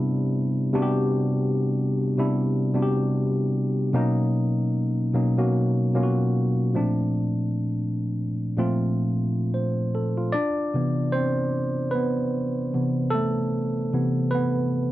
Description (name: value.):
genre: R&B.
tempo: 75 BPM.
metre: 4/4.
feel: swing 60% on 16ths.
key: unclear.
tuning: A4 = 440 Hz.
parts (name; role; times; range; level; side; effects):
tine electric piano; solo; 0.0-14.9 s; Bb2 to D5; -22 LUFS; equal; overdrive.
room: light reverb.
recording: dry, close 1970s-style studio recording.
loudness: -22 LUFS.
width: side -15 dB against mid.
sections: 0.0-10.3 A section; 10.3-14.9 B section.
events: tine electric piano solo 10.3-14.9.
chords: 0.0 Cmaj9; 3.9 Bmaj9; 6.7 Bbmaj9; 10.3 Cmaj9.